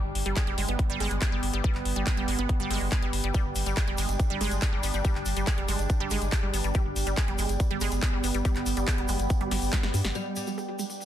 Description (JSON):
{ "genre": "psychedelic trance", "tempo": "141 BPM", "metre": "4/4", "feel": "straight", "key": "G major", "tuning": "A4 = 440 Hz", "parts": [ { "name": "evolving wavetable pad", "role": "sustained chords", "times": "0.0-11.1 s", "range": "G3 to D4", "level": "-34 LUFS", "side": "right 2 dB", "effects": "chorus, built-in reverb, sidechain pumping" }, { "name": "round analog bass", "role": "bass", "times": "0.0-10.1 s", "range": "F1 to G2", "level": "-30 LUFS", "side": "equal", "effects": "none" }, { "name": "ethereal airy pad", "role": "texture", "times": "0.1-11.1 s", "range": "G4 to G5", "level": "-40 LUFS", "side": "equal", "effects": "ensemble chorus, built-in reverb, phaser, sidechain pumping" }, { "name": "big-room dance drum kit", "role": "drums", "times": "0.2-11.1 s", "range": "handclaps, hi-hat, snare drum", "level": "-34 LUFS", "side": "left 1 dB", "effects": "low-pass filter on hats, low-pass filter on snare" }, { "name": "wide unison pluck", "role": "riff", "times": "0.3-10.9 s", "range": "G3 to Ab4", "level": "-33 LUFS", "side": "moving between left 5 dB and right 7 dB", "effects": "auto-pan, sidechain pumping, tape echo" }, { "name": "electronic kick drum", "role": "drums", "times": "0.4-9.8 s", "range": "none", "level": "-27 LUFS", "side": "equal", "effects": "none" }, { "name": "egg shaker", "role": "percussion", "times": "3.3-11.1 s", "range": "none", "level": "-40 LUFS", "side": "left 2 dB", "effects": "none" }, { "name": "oud", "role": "melody", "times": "10.2-10.5 s", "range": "G3", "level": "-35 LUFS", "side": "equal", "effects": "phaser, sidechain pumping, tape echo" } ], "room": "digital ambience", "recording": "dense, heavily limited modern master", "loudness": "-25 LUFS", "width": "side -11 dB against mid", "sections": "0.0-10.2 A section", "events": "fade-in on ambient pad 0.0-10.2; drum fill 9.5-10.2", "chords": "0.0 G5", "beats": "0.36 0.79 1.22 | 1.64 2.07 2.49 2.92 | 3.34 3.77 4.20 4.62 | 5.05 5.47 5.90 6.32 | 6.75 7.17 7.60 8.03 | 8.45 8.88 9.30 9.73 | 10.15 10.58 11.00" }